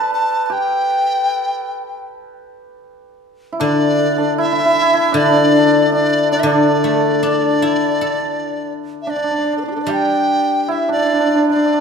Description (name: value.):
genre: chinese traditional, Chinese chamber ensemble.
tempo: 77 BPM.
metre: 4/4.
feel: rubato.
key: D zhi mode.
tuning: A4 = 441 Hz.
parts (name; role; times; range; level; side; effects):
hollow large dizi; melody; 0.0-11.8 s; D4 to A5; -18 LUFS; left 1 dB; none.
hammered dulcimer; second line; 0.0-11.8 s; D4 to D5; -19 LUFS; right 2 dB; none.
guzheng; accompaniment; 3.6-11.8 s; D3 to A4; -18 LUFS; left 2 dB; none.
room: wet recital hall reverb, RT60 1.5 s.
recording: minimal, uncompressed stereo recording.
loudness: -13 LUFS.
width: side -6 dB against mid.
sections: 0.0-9.9 A section; 9.9-11.8 B section.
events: none.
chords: none.